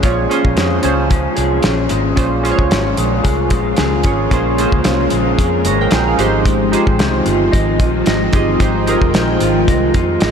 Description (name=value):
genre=indie pop, bedroom pop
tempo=112 BPM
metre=4/4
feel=swing 55% on 16ths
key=Bb dorian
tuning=A4 = 440 Hz
part: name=chorused retro synth keys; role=accompaniment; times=0.0-10.3 s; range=Db4 to Bb5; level=-19 LUFS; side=right 4 dB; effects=none
part: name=electric guitar through a small old amp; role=accompaniment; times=0.0-10.3 s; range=Bb2 to Eb5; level=-18 LUFS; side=left 3 dB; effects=lush chorus, warbly pitch drift
part: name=vintage muted fingered electric bass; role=bass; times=0.0-10.3 s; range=F1 to F2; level=-20 LUFS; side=equal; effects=none
part: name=cloth-damped thuddy drum kit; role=drums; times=0.0-10.3 s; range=hi-hat, kick drum, snare drum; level=-18 LUFS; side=equal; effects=none
part: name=string machine, full ensemble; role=sustained chords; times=2.2-10.3 s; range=Db3 to G5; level=-21 LUFS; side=equal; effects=ensemble chorus
room=moderate huge ambient reverb, RT60 8.5 s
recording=dreamy mix soaked in reverb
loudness=-12 LUFS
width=side -7 dB against mid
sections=0.0-2.2 A section; 2.2-10.3 B section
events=none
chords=0.0 Bbm7; 6.2 Fm7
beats=| 0.04 0.57 1.11 1.64 | 2.18 2.71 3.25 3.78 | 4.32 4.85 5.39 5.92 | 6.46 7.00 7.53 8.07 | 8.61 9.14 9.68 10.22